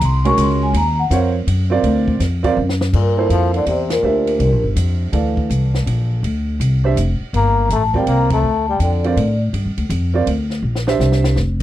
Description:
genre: modal jazz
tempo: 164 BPM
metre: 3/4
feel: swing 65% on 8ths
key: G dorian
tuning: A4 = 440 Hz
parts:
  - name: upright bass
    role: bass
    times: 0.0-11.6 s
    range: F1 to A2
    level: -17 LUFS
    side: left 1 dB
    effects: none
  - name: compact cocktail drum kit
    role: drums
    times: 0.0-11.6 s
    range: crash cymbal, hi-hat, kick drum, ride cymbal, snare drum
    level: -28 LUFS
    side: equal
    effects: none
  - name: vibraphone with medium mallets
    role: melody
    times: 0.1-4.6, 7.4-9.4 s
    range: Bb4 to Db6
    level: -19 LUFS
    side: left 1 dB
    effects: none
  - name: warm grand piano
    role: accompaniment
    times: 0.2-11.3 s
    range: E3 to F5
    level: -20 LUFS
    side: right 6 dB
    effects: none
  - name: bright trombone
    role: second line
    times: 2.9-4.6, 7.3-9.4 s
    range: Bb2 to Bb3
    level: -22 LUFS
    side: left 8 dB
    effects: none
room: little or no reverb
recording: dry, close 1970s-style studio recording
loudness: -14 LUFS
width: side -13 dB against mid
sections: 0.0-2.9 A section; 2.9-11.6 B section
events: vibraphone solo 0.0-2.9; drum fill 2.6-2.9, 10.6-11.4; band accent 3.9, 8.3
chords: 0.0 Ebm9; 1.8 D7alt; 2.9 Gm11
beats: 0.01 0.38 | 0.75 1.11 1.48 | 1.84 2.21 2.57 | 2.94 3.30 3.67 | 4.04 4.40 4.77 | 5.14 5.50 5.87 | 6.24 6.60 6.97 | 7.34 7.70 8.07 | 8.44 8.80 9.17 | 9.54 9.90 10.27 | 10.63 11.00 11.37

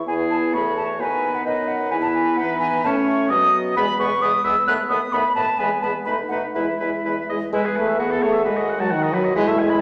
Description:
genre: quick classical-period movement for wind quintet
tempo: 130 BPM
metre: 2/4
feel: rubato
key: E major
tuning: A4 = 441 Hz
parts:
  - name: hollow concert flute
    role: melody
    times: 0.0-9.8 s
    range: D#5 to F#6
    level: -25 LUFS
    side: equal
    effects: none
  - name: clear French horn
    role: accompaniment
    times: 0.0-9.8 s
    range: D#3 to B3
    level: -27 LUFS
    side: equal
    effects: none
  - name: clear oboe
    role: second line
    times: 0.1-9.8 s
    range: E4 to B5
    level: -29 LUFS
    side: equal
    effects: none
  - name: bright clarinet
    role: accompaniment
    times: 0.1-9.8 s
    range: B3 to B4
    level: -28 LUFS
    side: equal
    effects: none
  - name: mellow bassoon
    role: bass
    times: 0.1-9.8 s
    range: D#2 to E3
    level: -31 LUFS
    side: equal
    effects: none
room: wet recital hall reverb, RT60 1.3 s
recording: none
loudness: -21 LUFS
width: mono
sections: 0.1-7.5 A section; 7.5-9.8 A section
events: none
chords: 0.1 E; 0.5 F#m7/E; 1.0 B/D#; 1.9 E5; 2.9 A; 3.3 B; 3.8 E; 4.7 B7/D#; 5.6 E; 6.1 B7; 6.5 E; 8.4 B/D#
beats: | 0.07 0.54 | 1.00 1.46 | 1.93 2.39 | 2.85 3.31 | 3.77 4.22 | 4.67 5.13 | 5.59 6.06 | 6.55 7.04 | 7.52 7.98 | 8.45 8.90 | 9.35 9.80

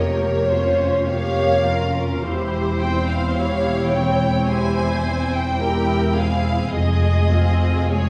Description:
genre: classical, slow romantic movement for string orchestra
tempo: 53 BPM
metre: 4/4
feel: rubato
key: unclear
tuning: A4 = 440 Hz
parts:
  - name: warm studio violin section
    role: melody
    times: 0.0-8.1 s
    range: Db5 to Ab5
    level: -27 LUFS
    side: equal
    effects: none
  - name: warm studio violin section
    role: second line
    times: 0.0-8.1 s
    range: Ab4 to Db5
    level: -28 LUFS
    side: equal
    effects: none
  - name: warm studio viola section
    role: accompaniment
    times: 0.0-8.1 s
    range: Ab3 to Ab4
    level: -28 LUFS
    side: equal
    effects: none
  - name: dark studio double bass section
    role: bass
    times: 0.0-8.1 s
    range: E1 to F1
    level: -26 LUFS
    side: equal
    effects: none
  - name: rich studio cello section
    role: bass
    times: 0.0-8.1 s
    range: E2 to F2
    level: -25 LUFS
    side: equal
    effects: none
room: wet recital hall reverb, RT60 1.4 s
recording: heard from further back in the room, small room ambience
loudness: -20 LUFS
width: mono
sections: 0.0-8.1 A section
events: none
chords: 0.0 Gm7b5/F; 2.2 C/E; 6.7 Fm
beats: 1.09 | 2.23 3.38 4.49 5.61 | 6.75 7.88

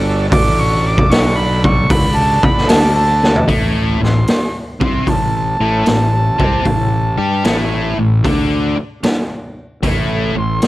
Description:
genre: blues rock power trio and southern rock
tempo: 76 BPM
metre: 4/4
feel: swing 67% on 8ths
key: unclear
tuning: A4 = 441 Hz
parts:
  - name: overdriven tonewheel organ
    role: sustained chords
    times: 0.0-3.4 s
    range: D4 to D5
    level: -23 LUFS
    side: right 3 dB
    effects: slow rotary speaker
  - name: fuzz fingered electric bass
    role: bass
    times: 0.0-10.6 s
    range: G1 to G2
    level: -18 LUFS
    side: equal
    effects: overdrive
  - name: overdriven harmonica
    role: melody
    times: 0.3-10.6 s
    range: A5 to D6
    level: -18 LUFS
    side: right 1 dB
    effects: none
  - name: raw garage drum kit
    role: drums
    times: 0.3-10.7 s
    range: hi-hat, kick drum, snare drum, toms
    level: -16 LUFS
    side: equal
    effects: none
  - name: overdriven electric guitar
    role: riff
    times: 3.5-10.6 s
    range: A2 to G4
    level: -17 LUFS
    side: left 1 dB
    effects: none
room: light reverb, small room reverb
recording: none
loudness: -12 LUFS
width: side -17 dB against mid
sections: 0.0-3.5 A section; 3.5-10.7 B section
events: harmonica solo 0.0-3.5; drum fill 3.1-3.5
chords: 0.0 D; 3.5 A5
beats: | 0.32 1.11 1.90 2.69 | 3.48 4.28 5.07 5.86 | 6.66 7.45 8.24 9.04 | 9.83 10.62

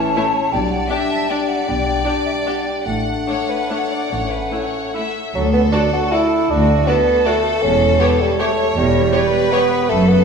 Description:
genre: classical, orchestral ballroom waltz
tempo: 138-170 BPM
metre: 3/4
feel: rubato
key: D major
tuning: A4 = 439 Hz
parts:
  - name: clear chamber violin section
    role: melody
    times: 0.0-10.2 s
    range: F#4 to F#5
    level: -23 LUFS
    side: left 3 dB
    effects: none
  - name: hollow concert flute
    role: second line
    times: 0.0-4.9 s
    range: E5 to A5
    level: -24 LUFS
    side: left 2 dB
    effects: none
  - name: warm clarinet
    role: second line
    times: 0.0-5.2 s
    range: C#4 to D4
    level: -26 LUFS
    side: left 5 dB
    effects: none
  - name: warm bassoon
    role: accompaniment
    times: 0.0-10.2 s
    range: E3 to F#4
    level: -19 LUFS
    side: right 2 dB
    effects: none
  - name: rich studio violin section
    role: second line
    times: 0.2-9.6 s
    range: E4 to E5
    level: -28 LUFS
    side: left 3 dB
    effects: none
  - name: rich studio viola section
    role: accompaniment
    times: 0.2-9.6 s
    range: A3 to C#5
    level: -28 LUFS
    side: left 1 dB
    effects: none
  - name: rich chamber double bass section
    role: bass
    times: 0.5-10.2 s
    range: E1 to D2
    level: -24 LUFS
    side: right 2 dB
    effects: none
  - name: rich symphonic cello section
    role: bass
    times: 0.5-10.2 s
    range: D2 to B2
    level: -21 LUFS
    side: equal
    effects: none
room: wet scoring stage reverb, RT60 1.9 s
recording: heard from further back in the room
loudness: -15 LUFS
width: side -6 dB against mid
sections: 0.0-5.3 A section; 5.3-10.2 B section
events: none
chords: 0.0 A; 0.5 G/B; 2.9 D/A; 4.1 A; 5.3 D; 7.6 C#dim/E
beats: 0.16 | 0.53 0.91 1.31 | 1.68 2.06 2.47 | 2.87 3.28 3.71 | 4.12 4.53 4.95 | 5.35 5.73 6.13 | 6.50 6.88 7.26 | 7.63 8.01 8.40 | 8.77 9.14 9.53 | 9.90

